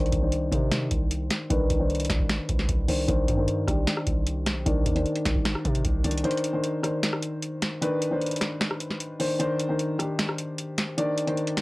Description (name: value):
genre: hip hop, trap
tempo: 152 BPM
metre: 4/4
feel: half-time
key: C harmonic minor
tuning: A4 = 440 Hz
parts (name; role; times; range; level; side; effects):
- dark concert grand piano; accompaniment; 0.0-11.6 s; Eb3 to D5; -27 LUFS; left 1 dB; low-pass filter, cassette tape
- long sustained 808-style bass; bass; 0.0-6.2 s; B1 to C3; -29 LUFS; equal; none
- booming analog drum machine; drums; 0.1-11.6 s; finger snaps, hi-hat, kick drum, rim click, snare drum; -26 LUFS; equal; cassette tape
room: light reverb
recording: home recording on cassette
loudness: -24 LUFS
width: side -21 dB against mid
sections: 0.0-11.6 A section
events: filter sweep on grand piano 0.0-6.2; break 6.2-11.6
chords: 0.0 Cmadd9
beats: 0.32 0.71 1.11 | 1.50 1.90 2.29 2.69 | 3.08 3.48 3.87 4.27 | 4.66 5.06 5.45 5.85 | 6.24 6.64 7.03 7.43 | 7.82 8.21 8.61 9.01 | 9.40 9.79 10.19 10.58 | 10.98 11.37